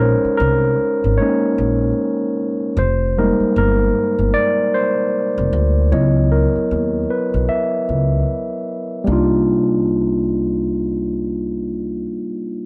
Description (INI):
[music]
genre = R&B, neo-soul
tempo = 76 BPM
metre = 4/4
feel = swing 60% on 16ths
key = unclear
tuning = A4 = 440 Hz
[part]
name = overdriven tine electric piano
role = accompaniment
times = 0.0-12.7 s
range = Gb3 to Fb5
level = -20 LUFS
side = equal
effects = none
[part]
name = upright bass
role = bass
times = 0.0-12.1 s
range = F1 to Eb2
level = -22 LUFS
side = equal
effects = none
[sound]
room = light reverb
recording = none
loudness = -18 LUFS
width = mono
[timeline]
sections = 0.0-9.1 A section; 9.1-12.2 B section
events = tine electric piano solo 0.0-9.1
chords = 0.0 Bbm11; 2.8 Fm11; 5.9 Dbm11; 9.1 Cm11